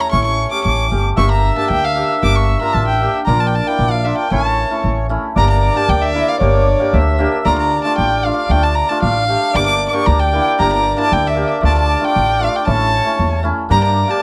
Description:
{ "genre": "klezmer", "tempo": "115 BPM", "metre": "2/4", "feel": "straight", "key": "unclear", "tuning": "A4 = 441 Hz", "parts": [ { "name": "warm violin", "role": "melody", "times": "0.0-14.2 s", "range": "C#5 to D6", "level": "-20 LUFS", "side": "equal", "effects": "none" }, { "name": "mellow accordion", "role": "second line", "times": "0.0-14.2 s", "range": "C#5 to E5", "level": "-24 LUFS", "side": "equal", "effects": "none" }, { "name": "hammered dulcimer", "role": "accompaniment", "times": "0.1-14.2 s", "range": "A3 to G4", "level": "-23 LUFS", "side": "equal", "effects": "none" }, { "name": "upright bass", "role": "bass", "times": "0.1-14.0 s", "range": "G1 to G2", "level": "-20 LUFS", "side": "equal", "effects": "none" } ], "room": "little or no reverb", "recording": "dry, close 1970s-style studio recording", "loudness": "-15 LUFS", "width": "mono", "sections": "0.0-5.4 A section; 5.4-13.7 B section", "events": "none", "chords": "0.0 A; 1.2 Gm; 3.3 Bb; 4.3 A; 5.4 Gm; 7.5 Dm; 9.5 Gm; 11.6 Dm; 12.7 A; 13.7 Gm", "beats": "| 0.12 0.64 | 1.17 1.69 | 2.22 2.74 | 3.27 3.79 | 4.32 4.84 | 5.36 5.89 | 6.41 6.93 | 7.46 7.98 | 8.50 9.03 | 9.55 10.07 | 10.59 11.11 | 11.63 12.15 | 12.67 13.19 | 13.70 14.22" }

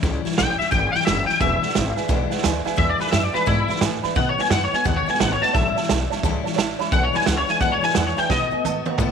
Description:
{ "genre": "rockabilly", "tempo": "174 BPM", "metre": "4/4", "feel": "swing 63% on 8ths", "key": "E mixolydian", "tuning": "A4 = 445 Hz", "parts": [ { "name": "picked steel-string acoustic guitar", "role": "accompaniment", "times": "0.0-9.1 s", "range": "E2 to F#4", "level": "-28 LUFS", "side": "left 14 dB", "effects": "none" }, { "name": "upright bass", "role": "bass", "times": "0.0-9.1 s", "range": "E1 to B2", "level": "-25 LUFS", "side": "equal", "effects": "none" }, { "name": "vintage drum kit", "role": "drums", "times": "0.0-9.1 s", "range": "hi-hat, kick drum, snare drum, toms", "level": "-24 LUFS", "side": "right 4 dB", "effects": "none" }, { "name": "twangy electric guitar", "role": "melody", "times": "0.4-9.0 s", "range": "E4 to A5", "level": "-22 LUFS", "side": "left 3 dB", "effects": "ensemble chorus, tape echo" }, { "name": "dark upright piano", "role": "accompaniment", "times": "1.4-9.1 s", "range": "B4 to B5", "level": "-28 LUFS", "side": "right 14 dB", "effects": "none" } ], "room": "light reverb, studio reverb", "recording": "1960s-style stereo with parts hard left and right", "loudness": "-18 LUFS", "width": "side -6 dB against mid", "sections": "0.0-9.1 A section", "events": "clean electric guitar solo 0.0-9.1; drum fill 8.3-9.1", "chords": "0.0 A7; 1.4 E7; 4.2 B7; 5.5 A7; 6.9 E7; 8.3 B7", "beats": "| 0.02 0.37 0.71 1.06 | 1.40 1.75 2.10 2.44 | 2.79 3.13 3.48 3.82 | 4.17 4.51 4.86 5.20 | 5.54 5.89 6.23 6.58 | 6.92 7.27 7.61 7.96 | 8.30 8.64 8.99" }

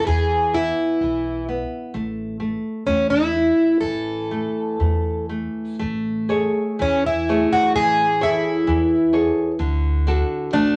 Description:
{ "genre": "fado-style ballad", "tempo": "59-66 BPM", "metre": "2/4", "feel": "rubato", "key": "A major", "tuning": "A4 = 439 Hz", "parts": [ { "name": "fingerpicked plugged-in twelve-string acoustic guitar", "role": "melody", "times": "0.0-10.8 s", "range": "C#4 to A4", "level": "-22 LUFS", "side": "equal", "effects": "none" }, { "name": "nylon-string guitar", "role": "accompaniment", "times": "0.0-10.8 s", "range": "D3 to C#5", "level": "-27 LUFS", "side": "equal", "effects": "none" }, { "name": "upright bass", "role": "bass", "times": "0.1-10.8 s", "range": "A1 to E2", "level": "-28 LUFS", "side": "equal", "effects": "none" } ], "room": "light reverb", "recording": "none", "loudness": "-21 LUFS", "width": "mono", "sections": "0.0-5.8 A section; 5.8-10.8 A section", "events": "none", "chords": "0.1 E5; 1.9 A5; 5.8 Amaj7; 9.6 D", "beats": "| 0.07 1.01 | 1.94 2.87 | 3.82 4.80 | 5.80 6.80 | 7.76 8.68 | 9.61 10.54" }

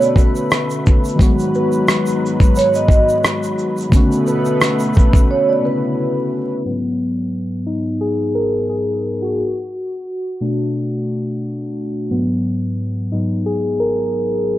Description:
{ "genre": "lo-fi hip hop", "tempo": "88 BPM", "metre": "4/4", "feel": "swing 55% on 16ths", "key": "G# minor", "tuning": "A4 = 440 Hz", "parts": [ { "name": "vibraphone with soft mallets", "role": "melody", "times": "0.0-6.6 s", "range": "B4 to D#5", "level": "-20 LUFS", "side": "right 2 dB", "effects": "low-pass filter, analog delay" }, { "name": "muted felt-like synth keys", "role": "accompaniment", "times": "0.0-14.6 s", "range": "G#2 to A#4", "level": "-18 LUFS", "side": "left 1 dB", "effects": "chorus, low-pass filter" }, { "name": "lush unison pad", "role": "sustained chords", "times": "0.0-6.6 s", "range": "G#2 to B4", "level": "-24 LUFS", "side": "equal", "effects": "chorus, low-pass filter" }, { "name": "dusty soul sampler-style drum kit", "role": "drums", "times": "0.0-5.3 s", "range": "hi-hat, kick drum, rim click, shaker", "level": "-13 LUFS", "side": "equal", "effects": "none" }, { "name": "tube shaker", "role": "percussion", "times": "0.0-5.3 s", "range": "none", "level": "-37 LUFS", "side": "right 5 dB", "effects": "none" } ], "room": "light reverb", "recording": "vinyl crackle, low-pass filter", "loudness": "-15 LUFS", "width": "side -14 dB against mid", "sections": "0.0-6.6 A section; 6.6-14.6 B section", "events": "break 5.3-6.6; synth keys solo 6.6-14.6; filter sweep 6.6-14.6", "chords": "0.0 Bm7; 1.2 G#m7; 3.9 Bm7; 6.6 G#m7; 9.4 Bm7; 12.1 G#m7", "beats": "0.51 | 1.20 1.88 2.56 3.24 | 3.92 4.60 5.29 5.97 | 6.65 7.33 8.01 8.70 | 9.38 10.06 10.74 11.42 | 12.10 12.79 13.47 14.15" }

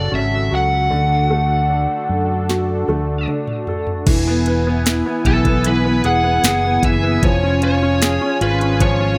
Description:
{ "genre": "pop ballad", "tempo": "76 BPM", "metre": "4/4", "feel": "straight", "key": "unclear", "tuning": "A4 = 440 Hz", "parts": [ { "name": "lead guitar through a small cranked amp", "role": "melody", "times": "0.0-9.2 s", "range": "A4 to F#5", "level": "-22 LUFS", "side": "equal", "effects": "overdrive" }, { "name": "clear baby grand piano", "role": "accompaniment", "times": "0.0-9.2 s", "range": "C#3 to B4", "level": "-23 LUFS", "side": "equal", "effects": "none" }, { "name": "warm analog pad", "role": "sustained chords", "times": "0.0-9.2 s", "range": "C#3 to G#5", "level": "-27 LUFS", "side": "equal", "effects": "chorus" }, { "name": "mellow fretless electric bass", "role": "bass", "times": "0.0-9.2 s", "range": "E1 to F#2", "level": "-22 LUFS", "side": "equal", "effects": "none" }, { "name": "smooth R&B drum kit", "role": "drums", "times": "2.5-9.0 s", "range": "crash cymbal, hi-hat, kick drum, snare drum, toms", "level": "-22 LUFS", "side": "equal", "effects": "none" } ], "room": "digital ambience", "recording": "none", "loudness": "-17 LUFS", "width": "mono", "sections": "0.0-4.1 A section; 4.1-9.2 B section", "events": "drum fill 2.5-4.1", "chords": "0.0 F#m; 0.9 D; 4.1 E; 7.2 C#/E#", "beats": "0.12 | 0.91 1.70 2.49 3.28 | 4.07 4.86 5.65 6.44 | 7.23 8.02 8.80" }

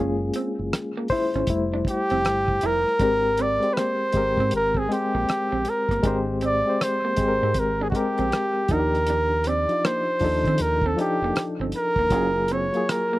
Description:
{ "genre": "R&B, neo-soul", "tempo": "79 BPM", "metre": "4/4", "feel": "swing 63% on 16ths", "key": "unclear", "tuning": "A4 = 440 Hz", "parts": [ { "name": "electric guitar through a small old amp", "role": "second line", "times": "0.0-13.2 s", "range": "Bb3 to E4", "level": "-32 LUFS", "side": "right 4 dB", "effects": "none" }, { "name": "bright reed electric piano", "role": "accompaniment", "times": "0.0-13.2 s", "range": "F3 to C5", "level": "-26 LUFS", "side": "left 2 dB", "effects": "fast tremolo" }, { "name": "deep dub fingered electric bass", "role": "bass", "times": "0.0-12.7 s", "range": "Eb1 to Eb3", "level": "-28 LUFS", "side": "right 1 dB", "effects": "none" }, { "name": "cloth-damped thuddy drum kit", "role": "drums", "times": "0.3-13.1 s", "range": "hi-hat, kick drum, rim click", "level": "-28 LUFS", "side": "right 1 dB", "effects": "none" }, { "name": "warm flugelhorn", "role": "melody", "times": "1.9-13.2 s", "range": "Gb4 to D5", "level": "-23 LUFS", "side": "equal", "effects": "none" } ], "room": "little or no reverb", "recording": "recorded outdoors, with no room sound", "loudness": "-20 LUFS", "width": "side -17 dB against mid", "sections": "0.0-3.0 A section; 3.0-13.2 B section", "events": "reed electric piano solo 0.0-3.0", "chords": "0.0 Gbmaj9; 1.5 Fmaj9; 3.0 Abmaj9; 8.7 Ebmaj9; 12.1 Gbmaj9", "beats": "0.72 1.48 2.24 | 3.00 3.75 4.51 5.27 | 6.03 6.79 7.55 8.31 | 9.07 9.83 10.59 11.35 | 12.11 12.87" }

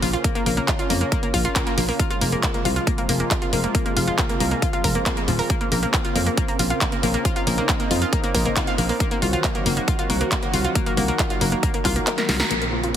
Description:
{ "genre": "uplifting trance", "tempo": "137 BPM", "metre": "4/4", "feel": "straight", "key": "Bb minor", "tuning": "A4 = 440 Hz", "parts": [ { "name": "lush unison pad", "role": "sustained chords", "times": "0.0-13.0 s", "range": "C3 to Gb4", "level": "-27 LUFS", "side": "equal", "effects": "chorus, sidechain pumping" }, { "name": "analog pluck", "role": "arpeggios", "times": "0.0-13.0 s", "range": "F3 to Bb4", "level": "-25 LUFS", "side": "left 2 dB", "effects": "chorus, sidechain pumping, dub echo" }, { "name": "solid FM bass", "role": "bass", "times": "0.0-13.0 s", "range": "Eb1 to F2", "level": "-24 LUFS", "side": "equal", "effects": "sidechain pumping" }, { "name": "big-room dance drum kit", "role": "drums", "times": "0.0-13.0 s", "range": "handclaps, hi-hat, snare drum", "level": "-26 LUFS", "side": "right 1 dB", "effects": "sidechain pumping on hats" }, { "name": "electronic kick drum", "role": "drums", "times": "0.2-11.9 s", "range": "none", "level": "-24 LUFS", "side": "equal", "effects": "none" }, { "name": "downlifter", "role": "sound effects", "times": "12.5-13.0 s", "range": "none", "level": "-34 LUFS", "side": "right 1 dB", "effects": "none" } ], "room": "light reverb", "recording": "heavily compressed radio sound", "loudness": "-19 LUFS", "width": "side -10 dB against mid", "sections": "0.0-12.5 A section", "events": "kick drops out 12.1-12.5; drum fill 12.2-12.5; band accent 12.4", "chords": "0.0 Bbmadd9; 2.0 Fm; 5.5 Bbmadd9; 9.0 Cdim", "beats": "| 0.24 0.68 1.12 1.56 | 2.00 2.43 2.87 3.31 | 3.75 4.18 4.62 5.06 | 5.50 5.94 6.38 6.81 | 7.25 7.69 8.13 8.56 | 9.00 9.44 9.88 10.32 | 10.76 11.19 11.63 12.07 | 12.51 12.94" }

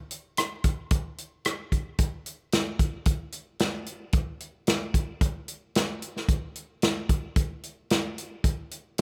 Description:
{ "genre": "rock", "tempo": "112 BPM", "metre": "4/4", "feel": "straight", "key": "none", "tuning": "none", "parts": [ { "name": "natural country drum kit", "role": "drums", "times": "0.1-9.0 s", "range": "hi-hat, kick drum, rim click, snare drum", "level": "-28 LUFS", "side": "equal", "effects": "none" } ], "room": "little or no reverb", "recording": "none", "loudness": "-29 LUFS", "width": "mono", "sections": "0.0-9.0 A section", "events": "none", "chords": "none", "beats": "0.38 0.91 1.45 | 1.99 2.52 3.06 3.60 | 4.14 4.67 5.21 5.75 | 6.29 6.82 7.36 7.90 | 8.44 8.97" }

